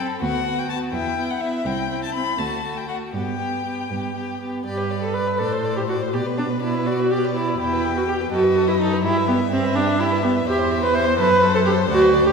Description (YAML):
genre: quick classical-period movement for string quartet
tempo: 83 BPM (dotted quarters)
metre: 6/8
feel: rubato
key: G major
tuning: A4 = 444 Hz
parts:
  - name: rich violin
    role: melody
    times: 0.0-12.3 s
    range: B4 to B5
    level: -28 LUFS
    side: left 6 dB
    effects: none
  - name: clear violin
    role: second line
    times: 0.0-12.3 s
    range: E4 to E5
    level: -29 LUFS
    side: left 2 dB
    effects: none
  - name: rich viola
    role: accompaniment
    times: 0.0-12.3 s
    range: A3 to C5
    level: -21 LUFS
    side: right 1 dB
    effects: none
  - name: rich cello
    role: bass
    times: 0.0-12.3 s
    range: C2 to B2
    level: -25 LUFS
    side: right 2 dB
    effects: none
room: wet scoring stage reverb, RT60 2.0 s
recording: heard from further back in the room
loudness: -19 LUFS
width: side -5 dB against mid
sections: 0.0-4.7 A section; 4.7-12.3 B section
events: none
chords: 0.2 Bm/D; 0.9 Em; 1.7 C; 2.4 D; 3.1 G; 5.4 D5/A; 6.1 Bmadd11; 7.6 Em; 8.3 B7/F#; 9.0 Em/G; 10.5 C/E; 11.2 F#dim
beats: | 0.22 0.94 | 1.66 2.39 | 3.14 3.90 | 4.66 5.39 | 6.13 6.87 | 7.59 8.32 | 9.04 9.75 | 10.47 11.18 | 11.89